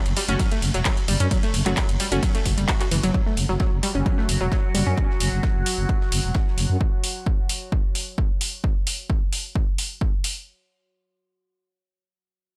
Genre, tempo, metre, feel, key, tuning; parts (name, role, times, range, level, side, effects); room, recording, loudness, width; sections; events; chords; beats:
driving peak-time techno; 131 BPM; 4/4; straight; F# phrygian; A4 = 440 Hz
growling FM bass; bass; 0.1-6.8 s; E1 to F#2; -26 LUFS; equal; sidechain pumping
techno drum kit; drums; 0.1-10.3 s; handclaps, hi-hat, ride cymbal; -30 LUFS; equal; sidechain pumping on hats, sidechain pumping on cymbals
analog pluck; riff; 0.2-4.9 s; E3 to F#4; -29 LUFS; equal; chorus, overdrive, vintage 12-bit sampler grit, sidechain pumping, analog delay
warm soul drum kit; drums; 0.2-6.7 s; ride cymbal, snare drum; -45 LUFS; equal
wavetable chord stab; stabs; 0.3-2.2 s; A3 to F#4; -32 LUFS; equal; cassette tape, sidechain pumping, tape echo
electronic kick drum; drums; 0.4-10.1 s; -25 LUFS; equal
overtone-sweeping drone; drone; 3.8-6.9 s; F#3 to F#4; -35 LUFS; equal; chorus, built-in reverb, sidechain pumping
digital ambience; dry, gritty hardware recording, transformer saturation; -23 LUFS; mono
0.0-3.1 A section; 3.1-10.5 B section
drop 0.0-3.1
0.0 F#m; 3.1 N.C.
0.39 0.85 | 1.31 1.77 2.23 2.68 | 3.14 3.60 4.06 4.52 | 4.97 5.43 5.89 6.35 | 6.81 7.26 7.72 8.18 | 8.64 9.10 9.55 10.01